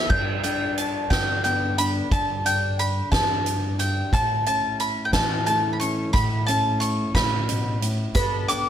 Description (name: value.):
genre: indie folk with a building arrangement.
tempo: 60 BPM (dotted quarters).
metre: 6/8.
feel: straight.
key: unclear.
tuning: A4 = 435 Hz.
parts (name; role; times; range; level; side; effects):
mandolin; melody; 0.0-8.7 s; G5 to D6; -24 LUFS; equal; analog delay.
picked steel-string acoustic guitar; accompaniment; 0.0-0.1, 8.2-8.7 s; G3 to A4; -32 LUFS; left 5 dB; none.
dark upright piano; arpeggios; 0.0-0.1, 8.2-8.7 s; B4 to G5; -31 LUFS; right 7 dB; none.
fingerpicked steel-string acoustic guitar; accompaniment; 0.1-8.2 s; E2 to D4; -29 LUFS; left 2 dB; none.
upright bass; bass; 0.1-8.4 s; G2 to A2; -27 LUFS; equal; none.
soft-mallet drum kit; drums; 0.1-8.6 s; crash cymbal, hi-hat, kick drum, snare drum; -26 LUFS; right 1 dB; none.
tube shaker; percussion; 8.2-8.3 s; none; -39 LUFS; left 4 dB; none.
room: light reverb, studio reverb.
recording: none.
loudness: -20 LUFS.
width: side -10 dB against mid.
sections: 0.1-8.7 A section.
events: none.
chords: 0.1 Gadd9; 4.1 A; 8.2 Gadd9.